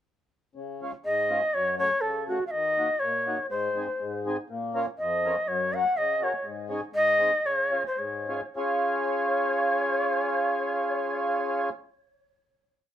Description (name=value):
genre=alpine folk, alpine dance band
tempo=99-124 BPM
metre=2/4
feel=straight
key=Db major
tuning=A4 = 438 Hz
part: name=mellow accordion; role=accompaniment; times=0.6-11.7 s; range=F2 to Bb4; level=-29 LUFS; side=equal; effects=none
part: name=reedy shakuhachi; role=melody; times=1.0-11.7 s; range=Gb4 to Gb5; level=-26 LUFS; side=left 1 dB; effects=plate reverb
room=moderate studio ambience, RT60 0.5 s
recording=dark, warm production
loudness=-24 LUFS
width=side -10 dB against mid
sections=0.5-8.6 A section; 8.6-10.9 final chord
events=slowing down 6.5-8.6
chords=0.5 Db; 1.5 Gbm; 2.5 Ebm; 3.5 Ab; 4.5 Bbm; 5.5 Gb; 6.5 Absus4; 6.9 Ab; 7.4 Db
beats=| 0.54 1.04 | 1.54 2.03 | 2.52 3.01 | 3.50 4.00 | 4.50 4.99 | 5.48 5.97 | 6.45 6.94 | 7.44 7.98 | 8.56 9.16 | 9.75 10.34